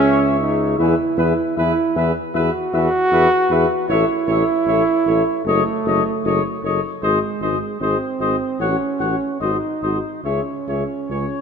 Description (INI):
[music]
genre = classical, brass quintet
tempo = 77 BPM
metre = 4/4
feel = rubato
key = C# minor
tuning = A4 = 440 Hz
[part]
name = mellow cornet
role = melody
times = 0.0-11.4 s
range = C#5 to F#5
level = -24 LUFS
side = left 10 dB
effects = none
[part]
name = clear trumpet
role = second line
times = 0.0-11.3 s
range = B4 to C#5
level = -27 LUFS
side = right 5 dB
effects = none
[part]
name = mellow French horn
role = accompaniment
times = 0.0-11.3 s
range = F#4 to A4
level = -27 LUFS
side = left 6 dB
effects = none
[part]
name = mellow trombone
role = accompaniment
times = 0.0-11.4 s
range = G#3 to F#4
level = -20 LUFS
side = right 3 dB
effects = none
[part]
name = warm bass trombone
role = bass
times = 0.0-11.3 s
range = F#1 to E2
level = -22 LUFS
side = equal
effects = none
[sound]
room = moderate scoring stage reverb, RT60 2.1 s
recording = none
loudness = -16 LUFS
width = side -6 dB against mid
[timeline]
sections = 0.0-11.4 A section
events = none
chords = 0.0 C#m; 0.8 E; 3.9 A; 5.5 D#m7b5/F#; 7.0 G#; 8.6 F#m/A; 9.4 G#7; 10.2 C#m